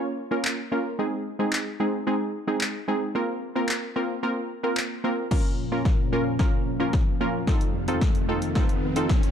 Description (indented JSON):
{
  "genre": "dance-pop",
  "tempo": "111 BPM",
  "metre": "4/4",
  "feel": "straight",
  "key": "Bb minor",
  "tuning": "A4 = 441 Hz",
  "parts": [
    { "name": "glassy wavetable pluck", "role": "accompaniment", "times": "0.0-9.3 s", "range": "Ab3 to Db5", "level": "-26 LUFS", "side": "right 1 dB", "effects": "chorus, sidechain pumping" },
    { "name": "punchy analog drum machine", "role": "drums", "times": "0.4-9.3 s", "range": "crash cymbal, handclaps, hi-hat, kick drum, snare drum", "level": "-24 LUFS", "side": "left 1 dB", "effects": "none" },
    { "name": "string machine, cellos", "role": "sustained chords", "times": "5.3-9.3 s", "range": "F2 to F5", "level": "-30 LUFS", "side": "left 1 dB", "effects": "ensemble chorus, sidechain pumping" },
    { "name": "riser", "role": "sound effects", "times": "6.7-9.3 s", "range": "none", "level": "-35 LUFS", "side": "right 3 dB", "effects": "none" }
  ],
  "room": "light reverb, digital ambience",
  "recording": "dark, warm production",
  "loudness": "-23 LUFS",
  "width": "side -8 dB against mid",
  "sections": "0.0-5.3 A section; 5.3-9.3 B section",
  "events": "build-up 5.3-9.3; drum fill 5.3-9.3; riser 6.7-9.3",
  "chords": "0.0 Bbm; 1.0 Ab; 3.2 Fsus4; 5.3 Bbm; 7.5 F7"
}